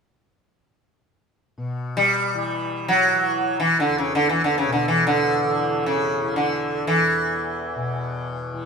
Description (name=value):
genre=indian classical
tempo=free time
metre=none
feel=none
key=E raga bhimpalasi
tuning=A4 = 440 Hz
part: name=tanpura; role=drone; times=1.6-8.7 s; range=E2 to E3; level=-30 LUFS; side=left 2 dB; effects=none
part: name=sitar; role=melody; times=2.0-8.7 s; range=C#3 to G3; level=-19 LUFS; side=right 1 dB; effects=none
room=light reverb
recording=minimal, uncompressed stereo recording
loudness=-19 LUFS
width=side -5 dB against mid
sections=1.6-8.7 A section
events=none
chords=none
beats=free time